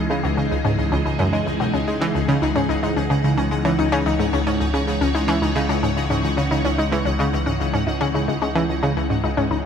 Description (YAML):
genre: ambient, sequencer-driven space music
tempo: 110 BPM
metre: 4/4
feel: straight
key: C# minor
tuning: A4 = 444 Hz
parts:
  - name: phased string machine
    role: sustained chords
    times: 0.0-9.7 s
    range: C#3 to C#5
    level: -24 LUFS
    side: equal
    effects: ensemble chorus, phaser
  - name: wide unison pluck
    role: arpeggios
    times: 0.0-9.6 s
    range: G#3 to F#4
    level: -25 LUFS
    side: left 3 dB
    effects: auto-pan, ping-pong delay
  - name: analog pluck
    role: riff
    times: 0.0-9.6 s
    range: C#2 to G#3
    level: -22 LUFS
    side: right 1 dB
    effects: chorus, ping-pong delay
  - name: warm sub bass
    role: bass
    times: 0.0-9.7 s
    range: C#2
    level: -29 LUFS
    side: equal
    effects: none
  - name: pulsing gated texture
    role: texture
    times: 0.0-9.7 s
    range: D#4 to F#5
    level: -29 LUFS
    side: left 3 dB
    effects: chorus, built-in reverb
room: moderate plate reverb, RT60 3.4 s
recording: none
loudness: -18 LUFS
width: side -7 dB against mid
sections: 0.0-9.7 A section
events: none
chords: 0.0 C#madd9